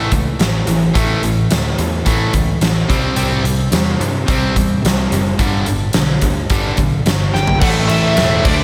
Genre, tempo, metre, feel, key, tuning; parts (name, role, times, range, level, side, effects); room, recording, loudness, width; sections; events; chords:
hard rock; 108 BPM; 4/4; straight; A4 = 440 Hz
distorted electric guitar; riff; 0.0-8.6 s; G2 to D4; -22 LUFS; equal; overdrive, slapback echo
overdriven semi-hollow guitar; riff; 0.0-8.6 s; G2 to D4; -23 LUFS; equal
vintage muted picked electric bass; bass; 0.0-8.6 s; E1 to G2; -22 LUFS; equal
huge arena drum kit; drums; 0.1-8.6 s; crash cymbal, hi-hat, kick drum, ride cymbal, snare drum, toms; -20 LUFS; equal
nasal lead guitar with a parked wah; melody; 7.3-8.6 s; D5 to G5; -21 LUFS; equal; overdrive, slapback echo
light reverb; -15 LUFS; mono
0.0-7.6 A section; 7.6-8.6 B section
drum fill 7.3
0.0 A; 2.9 C; 5.4 G; 7.6 A5